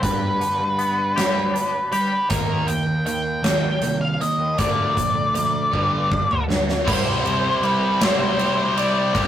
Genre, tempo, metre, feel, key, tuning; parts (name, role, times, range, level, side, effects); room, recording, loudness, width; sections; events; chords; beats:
quiet-loud alternative rock; 53 BPM (dotted quarters); 6/8; straight; A4 = 440 Hz
octave-fuzz lead guitar; melody; 0.0-9.3 s; Bb4 to G5; -22 LUFS; left 1 dB; distortion
twangy electric guitar; arpeggios; 0.0-2.3 s; G2 to G4; -28 LUFS; left 3 dB; tremolo
fuzz picked electric bass; bass; 0.0-9.3 s; G1 to G3; -27 LUFS; equal; overdrive
huge arena drum kit; drums; 0.0-9.3 s; crash cymbal, hi-hat, kick drum, ride cymbal, snare drum, toms; -24 LUFS; equal
cranked stack guitar; riff; 2.3-9.3 s; G2 to G4; -26 LUFS; right 4 dB; overdrive
tight distorted guitar; riff; 6.8-9.3 s; C3 to G4; -25 LUFS; left 4 dB; distortion
moderate booth ambience, RT60 0.2 s; rough rehearsal-room recording, warm saturation; -18 LUFS; side -10 dB against mid
0.0-6.9 A section; 6.9-9.3 B section
drum fill 5.7-6.9
0.0 G; 2.3 Eb6; 4.6 Bb/D; 5.7 G5; 6.9 Cadd9
| 0.02 1.16 | 2.30 3.44 | 4.58 5.72 | 6.86 8.00 | 9.14